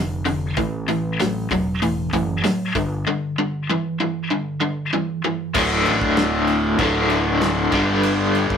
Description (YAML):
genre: classic rock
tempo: 96 BPM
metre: 4/4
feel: straight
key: D major from 5.6 s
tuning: A4 = 440 Hz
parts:
  - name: overdriven electric guitar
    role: riff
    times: 0.0-8.6 s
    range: D2 to G3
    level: -19 LUFS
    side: left 1 dB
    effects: tremolo
  - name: growling fingered electric bass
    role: bass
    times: 0.0-8.6 s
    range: D1 to A1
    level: -26 LUFS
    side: equal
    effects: overdrive
  - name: damped 70s drum kit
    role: drums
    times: 0.3-8.6 s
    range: crash cymbal, hi-hat, kick drum, snare drum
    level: -28 LUFS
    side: right 1 dB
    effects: none
  - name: tonewheel organ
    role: sustained chords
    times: 5.6-8.6 s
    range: A3 to D5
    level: -31 LUFS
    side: right 1 dB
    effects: none
room: moderate studio reverb, RT60 0.5 s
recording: rough rehearsal-room recording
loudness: -18 LUFS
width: side -7 dB against mid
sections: 0.0-5.6 A section; 5.6-8.6 B section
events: none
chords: 0.0 F5; 0.6 A5; 2.8 G5; 5.6 D; 7.7 G